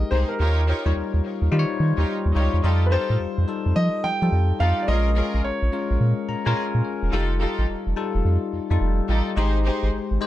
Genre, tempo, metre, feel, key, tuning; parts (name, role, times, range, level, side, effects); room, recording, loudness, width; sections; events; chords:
R&B; 107 BPM; 4/4; swing 64% on 16ths; A4 = 440 Hz
clear grand piano; melody; 0.0-6.5 s; Bb4 to G5; -28 LUFS; equal; ping-pong delay
bell-like tine electric piano; accompaniment; 0.0-10.3 s; G3 to Bb5; -27 LUFS; left 5 dB; phaser
round analog bass; bass; 0.0-10.2 s; E1 to F3; -20 LUFS; right 1 dB
warm studio string section; stabs; 0.1-9.9 s; Db4 to Db5; -30 LUFS; right 1 dB; ping-pong delay
small room ambience; -20 LUFS; side -14 dB against mid
0.0-2.6 A section; 2.6-10.3 B section
tine electric piano fill 6.0-7.1
0.4 Eb9; 2.6 F9; 4.9 Bbm7; 7.1 F9; 9.4 Abmaj7